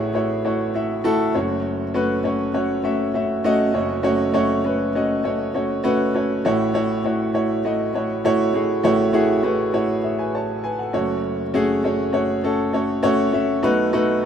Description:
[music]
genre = pop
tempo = 100 BPM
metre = 4/4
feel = straight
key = unclear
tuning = A4 = 440 Hz
[part]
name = warm upright piano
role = solo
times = 0.0-14.3 s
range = F#1 to A5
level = -18 LUFS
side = equal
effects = none
[sound]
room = moderate lush hall reverb, RT60 2.5 s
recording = rough home demo mix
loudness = -18 LUFS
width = side -8 dB against mid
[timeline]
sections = 0.0-14.3 A section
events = none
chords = 0.0 A6; 1.3 F#m; 6.4 A6; 10.9 F#m; 13.6 B7

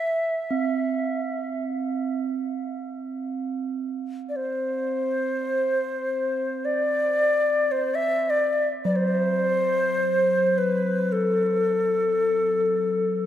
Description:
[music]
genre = world meditative, free-time meditation music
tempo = free time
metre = none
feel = none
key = unclear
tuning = A4 = 441 Hz
[part]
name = hollow Native American-style cedar flute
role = melody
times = 0.0-13.3 s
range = A4 to E5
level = -22 LUFS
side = left 1 dB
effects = dub echo
[part]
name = bronze singing bowl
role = texture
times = 0.5-13.3 s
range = F#3 to C4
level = -29 LUFS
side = right 3 dB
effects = none
[sound]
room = wet spring reverb, RT60 2.5 s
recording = echo-heavy mix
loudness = -22 LUFS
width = side -11 dB against mid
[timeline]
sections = 0.0-13.3 A section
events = none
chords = none

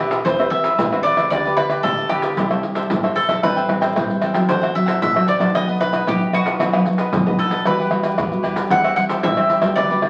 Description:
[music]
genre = samba and choro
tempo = 114 BPM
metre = 4/4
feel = straight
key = unclear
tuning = A4 = 440 Hz
[part]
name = bowl-back mandolin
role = melody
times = 0.0-10.1 s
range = F#4 to F#5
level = -23 LUFS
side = equal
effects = none
[part]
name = cavaquinho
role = accompaniment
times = 0.0-10.1 s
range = D4 to G5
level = -28 LUFS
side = equal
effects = none
[part]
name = nylon-string guitar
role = accompaniment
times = 0.0-10.1 s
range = G2 to B4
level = -25 LUFS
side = equal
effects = none
[part]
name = upright bass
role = bass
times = 0.0-10.1 s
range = E1 to F#2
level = -34 LUFS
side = equal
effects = none
[part]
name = maracas, surdo, pandeiro and tamborim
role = percussion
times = 0.1-10.1 s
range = none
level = -23 LUFS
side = equal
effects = none
[sound]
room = wet studio reverb, RT60 0.8 s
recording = very old 78 rpm record, vinyl crackle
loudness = -18 LUFS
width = mono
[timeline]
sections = 0.0-10.1 A section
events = drum fill 6.6-7.7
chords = 0.3 Cmaj7/E; 1.3 G/D; 2.4 C6; 3.4 Am7; 4.5 F#dim/A; 5.5 B; 7.7 Emadd9; 8.7 C/E

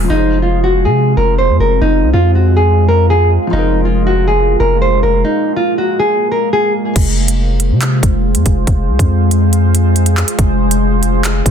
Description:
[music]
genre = hip hop, drill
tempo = 140 BPM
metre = 4/4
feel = half-time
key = F minor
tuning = A4 = 440 Hz
[part]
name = felt-muted upright piano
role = accompaniment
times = 0.0-7.0 s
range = F3 to C5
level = -25 LUFS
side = left 8 dB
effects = low-pass filter
[part]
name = deep dark ambient pad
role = sustained chords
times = 0.0-11.5 s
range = Ab3 to C5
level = -18 LUFS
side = equal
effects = chorus, built-in reverb
[part]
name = long sustained 808-style bass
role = bass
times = 0.0-11.5 s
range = F1 to C3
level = -13 LUFS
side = equal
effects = none
[part]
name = nylon-string guitar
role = melody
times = 0.1-6.7 s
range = Eb4 to C5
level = -14 LUFS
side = equal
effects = low-pass filter, tape echo
[part]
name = drill drum kit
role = drums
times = 7.0-11.5 s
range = crash cymbal, handclaps, hi-hat, kick drum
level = -15 LUFS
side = equal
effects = none
[sound]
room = light reverb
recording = dense, heavily limited modern master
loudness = -10 LUFS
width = side -8 dB against mid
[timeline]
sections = 0.1-7.0 A section; 7.0-11.5 B section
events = none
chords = 0.1 Fm

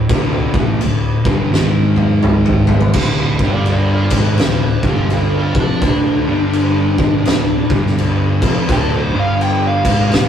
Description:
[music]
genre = stoner and doom metal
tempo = 84 BPM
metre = 4/4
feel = swing 62% on 8ths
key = D minor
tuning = A4 = 439 Hz
[part]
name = distorted electric guitar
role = riff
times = 0.0-10.3 s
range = D2 to A3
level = -26 LUFS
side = equal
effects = none
[part]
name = thick fuzz guitar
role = riff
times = 0.0-10.3 s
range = D2 to A3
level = -21 LUFS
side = left 4 dB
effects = distortion
[part]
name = thick fuzz guitar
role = riff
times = 0.0-10.3 s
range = D2 to A3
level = -19 LUFS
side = right 2 dB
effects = distortion
[part]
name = overdriven picked electric bass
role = bass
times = 0.0-10.3 s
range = D1 to A1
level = -20 LUFS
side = equal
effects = none
[part]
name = oversized low-tuned drum kit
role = drums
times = 0.1-10.3 s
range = crash cymbal, kick drum, snare drum, toms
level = -17 LUFS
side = equal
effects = none
[part]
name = fuzz lead guitar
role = melody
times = 3.5-10.3 s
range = D4 to G5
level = -19 LUFS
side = equal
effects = wah, distortion
[sound]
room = moderate small room reverb, RT60 0.5 s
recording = rough rehearsal-room recording, tube saturation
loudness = -12 LUFS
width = side -9 dB against mid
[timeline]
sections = 0.0-3.0 A section; 3.0-10.3 B section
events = drum fill 1.5-3.0; lead electric guitar solo 3.0-10.3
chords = 0.0 D5; 1.5 G#5; 3.0 D5; 3.3 G5; 4.0 D5; 4.8 G5; 5.5 Dm; 6.2 G5; 6.9 D5; 7.6 G5; 8.3 Dm; 9.1 G5; 9.8 Dm

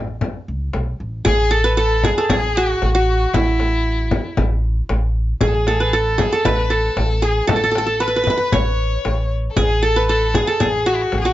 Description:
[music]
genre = Arabic maqam ensemble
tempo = 116 BPM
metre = 4/4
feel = straight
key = A maqam ajam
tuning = A4 = 442 Hz
[part]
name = qanun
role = melody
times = 0.0-11.3 s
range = E4 to C#5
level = -18 LUFS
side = right 1 dB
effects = none
[part]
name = upright bass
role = bass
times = 0.0-11.3 s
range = A1 to C#2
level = -20 LUFS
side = equal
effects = none
[part]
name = frame drum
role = percussion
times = 0.2-11.2 s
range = none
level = -22 LUFS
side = left 3 dB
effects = none
[part]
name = rich violin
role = second line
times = 1.3-11.3 s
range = E4 to C#5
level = -24 LUFS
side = left 4 dB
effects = none
[sound]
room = light reverb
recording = nothing above 7.7 kHz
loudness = -16 LUFS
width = side -14 dB against mid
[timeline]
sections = 0.0-1.3 A section; 1.3-11.3 B section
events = none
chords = none

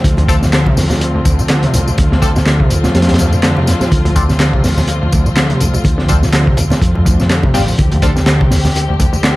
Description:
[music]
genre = breakbeat, breaks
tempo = 124 BPM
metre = 4/4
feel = swing 56% on 16ths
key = D minor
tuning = A4 = 440 Hz
[part]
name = dark symphonic string section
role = sustained chords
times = 0.0-9.4 s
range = D3 to G4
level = -20 LUFS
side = left 1 dB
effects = sidechain pumping
[part]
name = hollow-body short-scale fingered electric bass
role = bass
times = 0.0-9.4 s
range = A1 to F2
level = -16 LUFS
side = equal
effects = none
[part]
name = crunchy breakbeat drum kit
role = drums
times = 0.0-9.4 s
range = hi-hat, kick drum, snare drum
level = -15 LUFS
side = equal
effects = none
[part]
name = electronic tambourine and handclaps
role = drums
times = 0.0-9.3 s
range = none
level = -23 LUFS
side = left 1 dB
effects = overdrive
[part]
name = congas and bongos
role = percussion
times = 0.0-9.3 s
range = none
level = -22 LUFS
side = right 1 dB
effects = none
[part]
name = overdriven acid bass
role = riff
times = 0.2-9.4 s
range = D2 to D3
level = -17 LUFS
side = equal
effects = wide subtle chorus
[part]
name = band-passed chord stab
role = stabs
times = 0.3-8.1 s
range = C4 to A4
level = -24 LUFS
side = left 2 dB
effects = phaser, analog chorus, dub echo
[sound]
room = small room ambience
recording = vinyl crackle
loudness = -10 LUFS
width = side -18 dB against mid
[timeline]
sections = 0.0-9.4 A section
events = none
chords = 0.0 Dm7

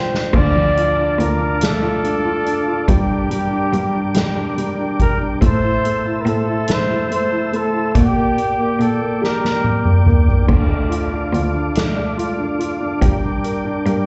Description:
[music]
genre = six-eight pop ballad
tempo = 47 BPM (dotted quarters)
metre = 6/8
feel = straight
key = unclear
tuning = A4 = 438 Hz
[part]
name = warm flugelhorn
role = melody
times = 0.0-10.2 s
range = G4 to D5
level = -23 LUFS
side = equal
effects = slapback echo, tape echo
[part]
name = warm baby grand piano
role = accompaniment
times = 0.0-14.1 s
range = D3 to G5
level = -24 LUFS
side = equal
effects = slapback echo
[part]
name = soft-mallet drum kit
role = drums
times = 0.1-14.1 s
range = crash cymbal, hi-hat, kick drum, snare drum, toms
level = -21 LUFS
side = equal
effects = none
[part]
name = tonewheel organ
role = sustained chords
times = 0.3-14.1 s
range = Bb3 to E6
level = -29 LUFS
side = equal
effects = chorus vibrato, subtle chorus
[part]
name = clear cello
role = bass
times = 0.3-14.1 s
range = D2 to Bb2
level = -24 LUFS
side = equal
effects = none
[sound]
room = light reverb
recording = live gig heard through the venue's PA, club reverb, nothing above 7.9 kHz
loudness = -18 LUFS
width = mono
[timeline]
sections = 0.3-14.1 A section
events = break 0.0-0.3; drum fill 0.0-0.3, 9.2-10.5; grand piano fill 0.0-0.3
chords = 0.3 Dm; 2.9 Gm; 5.4 Am; 8.0 Gm/Bb; 10.5 Dm; 13.0 Gm

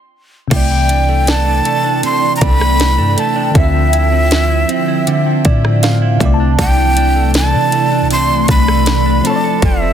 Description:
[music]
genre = contemporary R&B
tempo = 79 BPM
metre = 4/4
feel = straight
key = C major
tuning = A4 = 441 Hz
[part]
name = breathy jazz flute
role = melody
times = 0.5-9.9 s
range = E5 to C6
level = -16 LUFS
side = right 1 dB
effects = tape echo
[part]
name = FM electric piano with auto-pan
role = accompaniment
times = 0.5-9.9 s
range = C3 to A5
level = -20 LUFS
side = left 2 dB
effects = phaser
[part]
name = ethereal airy pad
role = sustained chords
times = 1.5-9.9 s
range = C3 to G5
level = -20 LUFS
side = equal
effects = ensemble chorus, built-in reverb, phaser
[part]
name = direct-recorded clean electric guitar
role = arpeggios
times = 0.5-9.9 s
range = C3 to A4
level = -20 LUFS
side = right 6 dB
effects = none
[part]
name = clean 808-style bass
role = bass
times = 0.5-9.9 s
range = F1 to C3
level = -15 LUFS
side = equal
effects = none
[part]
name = trap drum kit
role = drums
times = 0.5-9.8 s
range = crash cymbal, hi-hat, kick drum, rim click, snare drum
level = -16 LUFS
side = equal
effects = none
[sound]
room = digital ambience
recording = dense, heavily limited modern master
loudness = -10 LUFS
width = side -9 dB against mid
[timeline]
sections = 0.5-9.9 A section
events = stop 0.0-0.5; FM electric piano fill 5.1-6.6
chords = 0.0 N.C.; 0.5 C69; 3.5 Dm9; 6.2 C69; 9.2 F6

